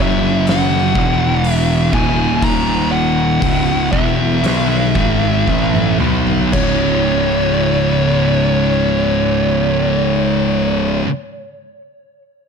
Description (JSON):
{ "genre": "stoner and doom metal", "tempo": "56-62 BPM", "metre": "4/4", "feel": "straight", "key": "C# minor", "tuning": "A4 = 442 Hz", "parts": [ { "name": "fuzz lead guitar", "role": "melody", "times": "0.0-11.0 s", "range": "C#5 to A#5", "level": "-20 LUFS", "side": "left 1 dB", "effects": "distortion, tape echo" }, { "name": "thick fuzz guitar", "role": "riff", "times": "0.0-11.1 s", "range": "C#2 to B3", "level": "-19 LUFS", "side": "left 12 dB", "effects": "distortion" }, { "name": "thick fuzz guitar", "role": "riff", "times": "0.0-11.1 s", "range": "C#2 to B3", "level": "-18 LUFS", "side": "right 12 dB", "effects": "distortion" }, { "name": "fuzz picked electric bass", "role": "bass", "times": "0.0-11.0 s", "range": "C#1 to B1", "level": "-20 LUFS", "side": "equal", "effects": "overdrive" }, { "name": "oversized low-tuned drum kit", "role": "drums", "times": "0.5-6.8 s", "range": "crash cymbal, hi-hat, kick drum, snare drum, toms", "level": "-21 LUFS", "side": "equal", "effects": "none" } ], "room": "little or no reverb", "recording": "none", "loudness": "-13 LUFS", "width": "side -6 dB against mid", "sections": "0.0-6.5 A section; 6.5-10.8 B section", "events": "slowing down 0.0-6.5; drum fill 5.5-6.5", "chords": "0.0 F#5; 1.0 E5; 1.9 D#5; 3.4 C#m; 6.5 C#5" }